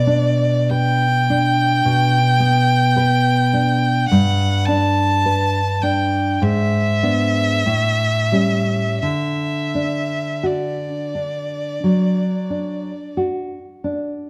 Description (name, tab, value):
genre	romantic duo for violin and classical guitar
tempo	42-54 BPM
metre	4/4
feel	rubato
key	D major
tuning	A4 = 440 Hz
part	rich violin	melody	0.0-13.2 s	D5 to A5	-22 LUFS	equal	none
part	nylon-string guitar	accompaniment	0.0-14.3 s	G2 to B4	-20 LUFS	equal	none
room	moderate recital hall reverb, RT60 1.4 s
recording	none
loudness	-18 LUFS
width	mono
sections	0.0-14.3 A section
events	none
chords	0.0 G/B; 4.1 G; 6.4 G#dim; 7.7 A7; 9.0 D